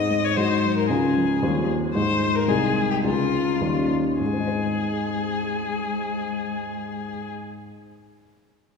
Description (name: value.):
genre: quick classical-period movement for piano quartet.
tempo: 101-115 BPM.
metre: 2/4.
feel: rubato.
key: Ab major.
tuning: A4 = 441 Hz.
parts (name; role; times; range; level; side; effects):
rich violin; melody; 0.0-7.3 s; F4 to Eb5; -26 LUFS; left 6 dB; none.
warm baby grand piano; accompaniment; 0.0-7.9 s; C2 to C5; -23 LUFS; left 1 dB; none.
dark cello; second line; 0.1-7.3 s; F3 to Ab3; -33 LUFS; left 1 dB; none.
room: wet concert hall reverb, RT60 1.9 s.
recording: heard from further back in the room.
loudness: -21 LUFS.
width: side -5 dB against mid.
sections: 0.0-4.2 A section; 4.2-6.5 B section.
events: slowing down 1.4-4.2.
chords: 0.4 Ab7; 0.9 Db; 1.4 Eb69; 2.0 Ab; 2.5 Ab/C; 3.0 Db; 3.6 Eb7; 4.2 Ab.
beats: 0.37 | 0.91 1.43 | 1.96 2.49 | 3.04 3.62 | 4.20 4.77 | 5.35 5.92.